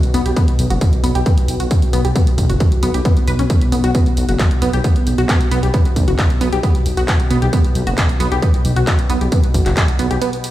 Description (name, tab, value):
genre	driving peak-time techno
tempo	134 BPM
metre	4/4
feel	straight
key	unclear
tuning	A4 = 441 Hz
part	analog drone	drone	0.0-10.5 s	B2	-23 LUFS	equal	chorus, sidechain pumping
part	punchy analog drum machine	drums	0.0-10.5 s	handclaps, hi-hat	-25 LUFS	equal	none
part	tight sequenced synth	riff	0.1-10.3 s	B3 to B4	-22 LUFS	equal	chorus, tube saturation, sidechain pumping, dub echo
part	detuned saw bass	bass	0.1-10.2 s	F#1 to B1	-18 LUFS	equal	sidechain pumping
part	electronic kick drum	drums	0.4-9.9 s	none	-15 LUFS	equal	none
room	little or no reverb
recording	played on a big sound system in a bare room, stone room reverb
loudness	-13 LUFS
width	side -14 dB against mid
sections	0.0-10.5 A section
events	break 10.2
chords	none